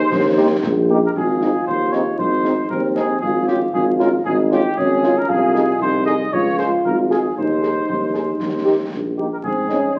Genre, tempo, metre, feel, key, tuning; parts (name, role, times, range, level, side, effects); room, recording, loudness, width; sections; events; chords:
military-style march for wind band; 116 BPM; 2/4; straight; Ab major; A4 = 441 Hz
warm trumpet section; melody; 0.0-10.0 s; G4 to Eb5; -26 LUFS; equal
small flute group; second line; 0.0-0.9 s; C5; -30 LUFS; equal
mellow trombone section; sustained chords; 0.0-0.9 s; barely audible
warm tuba; bass; 0.0-10.0 s; Ab1 to Ab2; -22 LUFS; equal
concert snare drum and concert bass drum; drums; 0.1-10.0 s; -32 LUFS; equal
warm French horn section; accompaniment; 0.4-9.8 s; Ab3 to Ab4; -25 LUFS; equal
clear euphonium; second line; 1.1-10.0 s; C4 to F4; -24 LUFS; equal
wet large studio reverb, RT60 1.2 s; very old 78 rpm record, vinyl crackle; -18 LUFS; mono
0.0-1.1 A section; 1.1-10.0 B section
0.1 Eb; 1.1 Ab; 3.2 Db/Ab; 5.3 Ab/C; 6.3 Db; 7.4 Ab/Eb; 8.4 Eb; 9.4 Ab